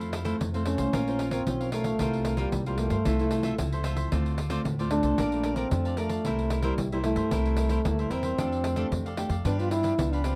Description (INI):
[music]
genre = samba and choro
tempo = 113 BPM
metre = 4/4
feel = straight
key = F major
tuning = A4 = 440 Hz
[part]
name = cavaquinho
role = accompaniment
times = 0.0-10.4 s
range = D4 to A5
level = -39 LUFS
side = equal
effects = none
[part]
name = nylon-string guitar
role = accompaniment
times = 0.0-10.4 s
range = F2 to C5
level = -36 LUFS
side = equal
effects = none
[part]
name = upright bass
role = bass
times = 0.0-10.4 s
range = Bb1 to G2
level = -32 LUFS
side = equal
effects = none
[part]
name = pandeiro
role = percussion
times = 0.0-10.4 s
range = none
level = -37 LUFS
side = equal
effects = none
[part]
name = mellow trombone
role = melody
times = 0.7-10.4 s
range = G3 to F4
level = -31 LUFS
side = equal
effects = none
[sound]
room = light reverb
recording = dry, close 1970s-style studio recording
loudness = -28 LUFS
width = mono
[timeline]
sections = 0.0-10.4 A section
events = none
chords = 0.0 Fmaj7; 0.9 Bbmadd9; 2.0 C7sus4; 3.1 Fmaj7/C; 4.1 Dm7; 5.2 Bbmaj7; 6.3 C7; 8.4 F69; 9.4 G7